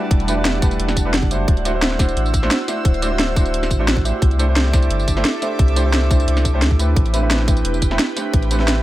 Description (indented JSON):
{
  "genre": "liquid drum and bass",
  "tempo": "175 BPM",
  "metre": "4/4",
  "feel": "straight",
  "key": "E minor",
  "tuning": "A4 = 443 Hz",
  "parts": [
    { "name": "warm grand piano", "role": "accompaniment", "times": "0.0-8.8 s", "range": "A3 to F#5", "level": "-24 LUFS", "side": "equal", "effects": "dub echo" },
    { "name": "airy breathy pad", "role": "sustained chords", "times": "0.0-8.8 s", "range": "G3 to E6", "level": "-28 LUFS", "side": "left 1 dB", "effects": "chorus" },
    { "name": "vibraphone with medium mallets", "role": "arpeggios", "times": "0.0-8.8 s", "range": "D4 to G4", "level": "-27 LUFS", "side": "right 5 dB", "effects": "dub echo" },
    { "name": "warm sub bass", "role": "bass", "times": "0.1-8.8 s", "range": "D1 to D2", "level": "-19 LUFS", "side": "equal", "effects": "none" },
    { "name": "drum and bass drum kit", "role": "drums", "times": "0.1-8.8 s", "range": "hi-hat, snare drum, tambourine", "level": "-22 LUFS", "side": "equal", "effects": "none" },
    { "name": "electronic kick drum", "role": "drums", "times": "0.1-8.4 s", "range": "none", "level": "-17 LUFS", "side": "equal", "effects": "none" }
  ],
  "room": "light reverb, digital ambience",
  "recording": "echo-heavy mix",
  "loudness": "-15 LUFS",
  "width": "side -15 dB against mid",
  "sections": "0.0-8.8 A section",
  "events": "none",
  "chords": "0.0 Em11; 1.5 D9; 4.2 C69; 7.0 Em11"
}